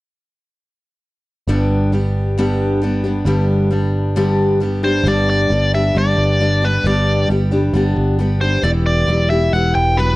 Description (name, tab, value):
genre	rock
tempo	134 BPM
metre	4/4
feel	straight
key	G major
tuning	A4 = 441 Hz
part	picked steel-string acoustic guitar	accompaniment	1.5-10.2 s	G2 to G4	-18 LUFS	left 1 dB	none
part	picked electric bass	bass	1.5-10.2 s	E1 to G1	-17 LUFS	equal	none
part	biting lead guitar	melody	4.8-10.2 s	B4 to G5	-18 LUFS	left 1 dB	overdrive
room	light reverb, small room ambience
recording	dark, warm production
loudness	-14 LUFS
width	side -19 dB against mid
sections	1.5-5.1 A section; 5.1-10.2 B section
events	none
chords	1.5 G; 8.6 Emadd9